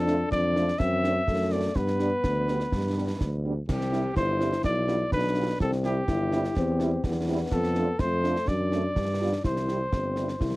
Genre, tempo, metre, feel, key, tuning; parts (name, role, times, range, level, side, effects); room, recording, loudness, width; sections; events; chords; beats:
military-style march for wind band; 125 BPM; 2/4; straight; C major; A4 = 440 Hz
mellow cornet; melody; 0.0-10.6 s; G4 to E5; -29 LUFS; equal
warm euphonium; second line; 0.0-10.6 s; A3 to E4; -31 LUFS; left 3 dB
warm tuba; bass; 0.0-10.6 s; G1 to G2; -28 LUFS; equal
dark French horn section; accompaniment; 0.1-10.3 s; F3 to F4; -32 LUFS; right 2 dB
concert snare drum, concert bass drum and clash cymbals; drums; 0.1-10.6 s; -32 LUFS; right 1 dB
little or no reverb; cassette tape; -24 LUFS; side -19 dB against mid
0.0-10.6 A section
0.0 Dm/F; 0.8 D7/F#; 1.8 G; 3.7 C; 4.6 G7/B; 5.6 C; 6.6 C/E; 7.5 Dm/F; 8.5 D7/F#; 9.0 G7; 9.4 C
0.31 | 0.80 1.28 | 1.76 2.24 | 2.72 3.20 | 3.68 4.16 | 4.64 5.12 | 5.60 6.08 | 6.57 7.05 | 7.53 8.01 | 8.49 8.97 | 9.45 9.93 | 10.41